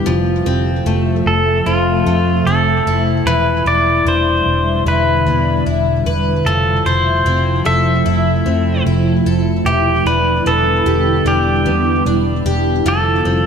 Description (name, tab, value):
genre	dream pop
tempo	75 BPM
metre	4/4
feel	straight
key	E phrygian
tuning	A4 = 441 Hz
part	ethereal airy pad	sustained chords	0.0-13.5 s	B2 to E5	-19 LUFS	right 1 dB	ensemble chorus, built-in reverb
part	picked twelve-string acoustic guitar	arpeggios	0.0-13.5 s	E3 to B4	-20 LUFS	left 4 dB	wide subtle chorus, tape echo
part	vintage muted fingered electric bass	bass	0.1-13.5 s	E1 to F2	-18 LUFS	right 1 dB	none
part	pedal steel guitar	melody	1.3-13.5 s	F4 to E5	-17 LUFS	equal	tape echo
room	moderate plate reverb, RT60 2.7 s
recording	none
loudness	-12 LUFS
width	side -7 dB against mid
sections	0.0-13.5 A section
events	none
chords	0.1 Fmaj7; 3.3 Em7; 6.5 Fmaj7; 9.7 Em7; 12.9 Fmaj7